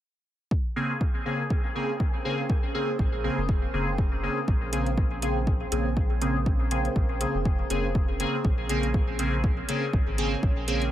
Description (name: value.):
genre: dub techno.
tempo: 121 BPM.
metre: 4/4.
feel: swing 56% on 16ths.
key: Bb minor.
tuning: A4 = 441 Hz.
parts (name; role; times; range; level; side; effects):
granular cloud pad; sustained chords; 1.7-10.9 s; Db4 to Db5; -37 LUFS; right 2 dB; built-in reverb, sidechain pumping.
electronic kick drum; drums; 0.5-10.5 s; none; -26 LUFS; equal; overdrive.
wind-like tuned noise texture; texture; 1.2-4.5 s; Ab4; -42 LUFS; right 3 dB; none.
resonant sweep polysynth; stabs; 0.8-10.8 s; Db3 to Ab4; -28 LUFS; equal; chorus, phaser, cassette tape, dub echo.
soft dub sub bass; bass; 3.0-10.9 s; F1 to Bb1; -30 LUFS; equal; sidechain pumping.
electronic hi-hat; drums; 4.7-10.9 s; none; -34 LUFS; right 1 dB; overdrive.
room: light reverb.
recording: none.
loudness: -24 LUFS.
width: side -12 dB against mid.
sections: 0.5-4.5 A section; 4.5-10.9 B section.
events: none.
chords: 0.5 Bbm9.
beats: | 0.51 1.01 1.50 2.00 | 2.50 2.99 3.49 3.98 | 4.48 4.97 5.47 5.97 | 6.46 6.96 7.46 7.95 | 8.45 8.94 9.44 9.93 | 10.43.